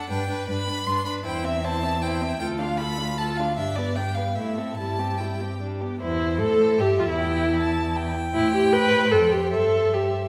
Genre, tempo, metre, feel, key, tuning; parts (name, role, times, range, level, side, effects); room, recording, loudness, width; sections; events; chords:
quick classical-period movement for string quartet; 154 BPM; 3/4; rubato; C major; A4 = 440 Hz
clear violin; melody; 0.0-10.3 s; E4 to C6; -33 LUFS; equal
clear violin; second line; 0.0-10.3 s; D4 to A5; -34 LUFS; equal
rich viola; accompaniment; 0.0-10.3 s; G3 to B4; -26 LUFS; equal
rich cello; bass; 0.0-10.3 s; D2 to A2; -30 LUFS; equal
wet recital hall reverb, RT60 1.5 s; heard from further back in the room; -24 LUFS; mono
0.0-6.0 A section; 6.0-10.3 B section
0.1 G; 1.3 C/E; 2.4 Dm; 3.6 G; 4.4 Am; 4.8 C/G; 5.6 G; 6.0 C/E; 7.2 Emadd11; 8.3 Am; 9.1 F; 9.5 C/G